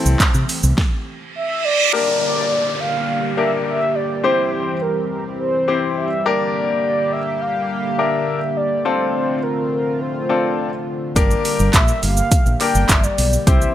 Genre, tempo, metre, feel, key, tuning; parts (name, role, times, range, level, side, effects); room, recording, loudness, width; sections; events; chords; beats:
dance-pop; 104 BPM; 4/4; straight; G dorian; A4 = 440 Hz
clear grand piano; accompaniment; 0.0-13.7 s; Bb3 to C5; -22 LUFS; left 5 dB; sidechain pumping
chorused pulse-width pad; sustained chords; 0.0-13.7 s; D3 to G4; -25 LUFS; equal; sidechain pumping
fingered electric bass; bass; 0.1-0.7, 11.2-13.6 s; G1 to C3; -18 LUFS; equal; sidechain pumping
pop drum kit; drums; 0.1-0.9, 11.2-13.7 s; handclaps, hi-hat, kick drum, shaker, snare drum; -16 LUFS; equal
reverse cymbal and downlifter; sound effects; 1.4-6.5 s; -23 LUFS; right 3 dB
mellow horn-like synth lead; melody; 1.4-13.7 s; Bb4 to G5; -21 LUFS; equal; chorus
group handclap; percussion; 11.7-13.0 s; -28 LUFS; right 5 dB
light reverb, digital ambience; bright 1980s-style digital production; -16 LUFS; side -11 dB against mid
0.0-1.9 A section; 1.9-13.7 B section
stop 0.8-1.9; reverse cymbal 1.4-1.9
0.0 C6; 1.9 Gm; 4.2 C; 6.3 Gm; 8.9 Dm7; 11.2 Gm
0.20 0.78 1.35 | 1.93 2.51 3.08 3.66 | 4.24 4.82 5.39 5.97 | 6.55 7.12 7.70 8.28 | 8.85 9.43 10.01 10.59 | 11.16 11.74 12.32 12.89 | 13.47